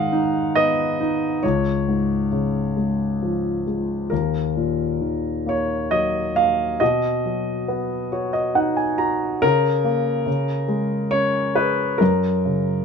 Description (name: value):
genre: classical, lyrical solo piano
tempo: 68 BPM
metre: 3/4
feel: rubato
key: unclear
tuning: A4 = 440 Hz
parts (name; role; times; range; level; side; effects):
- warm concert grand piano; solo; 0.0-12.8 s; C#2 to A#5; -19 LUFS; left 1 dB; none
room: light reverb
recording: minimal, uncompressed stereo recording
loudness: -19 LUFS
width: side -6 dB against mid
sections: 0.0-12.8 A section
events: grand piano fill 7.7-9.4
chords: 0.0 G#m; 1.4 C#; 4.1 D#m; 6.8 B; 9.4 A#m/C#; 10.3 C#5; 12.0 F#